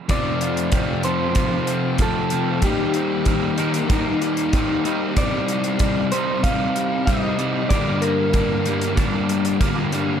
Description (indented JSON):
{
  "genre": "rock, shoegaze and dream pop",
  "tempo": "95 BPM",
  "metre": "4/4",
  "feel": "straight",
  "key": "unclear",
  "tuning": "A4 = 440 Hz",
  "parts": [
    { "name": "electric guitar through a small old amp", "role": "melody", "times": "0.1-8.9 s", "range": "G4 to F5", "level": "-26 LUFS", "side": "equal", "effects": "analog delay" },
    { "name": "direct-recorded clean electric guitar", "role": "arpeggios", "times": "0.1-10.2 s", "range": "G3 to Bb4", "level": "-31 LUFS", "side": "left 9 dB", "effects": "wide subtle chorus, analog delay" },
    { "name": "crunchy overdriven guitar", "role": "riff", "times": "0.1-10.2 s", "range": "F2 to Eb4", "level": "-24 LUFS", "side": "right 10 dB", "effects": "reverse reverb" },
    { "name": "thick fuzz guitar", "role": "riff", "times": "0.1-10.2 s", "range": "F2 to Eb4", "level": "-23 LUFS", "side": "left 8 dB", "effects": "distortion, ensemble chorus" },
    { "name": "gated 80s drum kit", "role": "drums", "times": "0.1-10.1 s", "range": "hi-hat, kick drum", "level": "-22 LUFS", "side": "equal", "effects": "none" }
  ],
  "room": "small room ambience",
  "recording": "dark, warm production",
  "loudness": "-18 LUFS",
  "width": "side -8 dB against mid",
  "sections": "0.1-10.2 A section",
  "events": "none",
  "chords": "0.1 F; 2.6 Eb6; 5.2 Cmadd9; 7.7 Gm",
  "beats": "| 0.09 0.73 1.36 2.00 | 2.63 3.27 3.90 4.53 | 5.17 5.80 6.44 7.07 | 7.71 8.34 8.98 9.61"
}